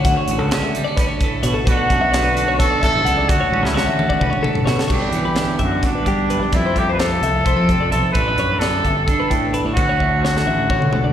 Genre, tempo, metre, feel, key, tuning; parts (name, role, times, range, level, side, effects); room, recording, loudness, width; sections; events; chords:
math rock and midwest emo; 259 BPM (eighths); 7/8; straight; D major; A4 = 440 Hz
twelve-string electric guitar; accompaniment; 0.0-11.1 s; D2 to F#4; -23 LUFS; right 4 dB; spring reverb, slapback echo
twelve-string electric guitar; arpeggios; 0.0-11.1 s; G4 to F#5; -25 LUFS; left 6 dB; slapback echo
fuzz fingered electric bass; bass; 0.0-11.1 s; G1 to G3; -22 LUFS; equal; overdrive
crisp fusion drum kit; drums; 0.0-11.0 s; crash cymbal, hi-hat, kick drum, snare drum, toms; -21 LUFS; equal
warm trumpet; melody; 1.7-11.1 s; D4 to B4; -20 LUFS; equal; slapback echo, digital delay
light reverb, studio ambience; live gig heard through the venue's PA, recital hall reverb; -15 LUFS; side -10 dB against mid
0.0-4.9 A section; 4.9-11.1 B section
drum fill 3.5-4.9, 10.0-11.1
0.0 Dmaj7; 4.9 Gmaj7; 6.5 Fmaj7; 8.2 A7sus4; 9.8 Dmaj7